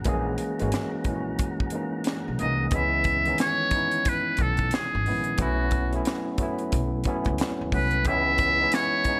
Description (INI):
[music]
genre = R&B, neo-soul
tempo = 90 BPM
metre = 4/4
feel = swing 62% on 16ths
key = C# minor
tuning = A4 = 440 Hz
[part]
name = tine electric piano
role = accompaniment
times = 0.0-9.2 s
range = D#3 to G#4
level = -31 LUFS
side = equal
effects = overdrive
[part]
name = tonewheel organ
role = sustained chords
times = 0.0-2.7 s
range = G#4 to A#5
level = -42 LUFS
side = equal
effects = slow rotary speaker, overdrive
[part]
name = upright bass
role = bass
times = 0.0-8.6 s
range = G#1 to D#2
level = -32 LUFS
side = equal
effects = none
[part]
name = tight funk drum kit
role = drums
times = 0.0-9.2 s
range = hi-hat, kick drum, snare drum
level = -32 LUFS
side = equal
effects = none
[part]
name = trumpet with metal mute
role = melody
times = 2.4-9.2 s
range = F#4 to E5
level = -27 LUFS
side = equal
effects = none
[sound]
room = light reverb, small room ambience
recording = none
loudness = -25 LUFS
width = mono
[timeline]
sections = 0.0-2.7 A section; 2.7-9.2 B section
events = none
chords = 0.0 F#9; 2.7 C#m9; 5.4 B7sus4; 8.1 C#m9